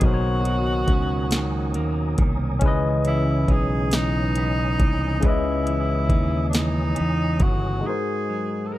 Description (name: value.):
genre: slow six-eight R&B.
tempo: 46 BPM (dotted quarters).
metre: 6/8.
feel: straight.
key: C# dorian.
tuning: A4 = 440 Hz.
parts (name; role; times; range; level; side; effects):
warm tenor saxophone; melody; 0.0-8.8 s; D4 to A#4; -28 LUFS; left 1 dB; none.
clean electric guitar; second line; 0.0-8.8 s; G#2 to D#4; -28 LUFS; right 3 dB; none.
barky tine electric piano; accompaniment; 0.0-8.8 s; B2 to D#5; -27 LUFS; left 4 dB; lush chorus.
mellow tonewheel organ; sustained chords; 0.0-7.8 s; C#5 to D#6; -36 LUFS; equal; chorus vibrato, fast rotary speaker.
fingered electric bass; bass; 0.0-7.8 s; G1 to E2; -24 LUFS; equal; none.
smooth R&B drum kit; drums; 0.0-7.6 s; hi-hat, kick drum, snare drum; -21 LUFS; equal; none.
room: little or no reverb.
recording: none.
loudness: -20 LUFS.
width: side -15 dB against mid.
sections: 0.0-7.8 A section.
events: none.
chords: 0.0 Bmaj9; 2.6 C#m9; 7.8 G#9.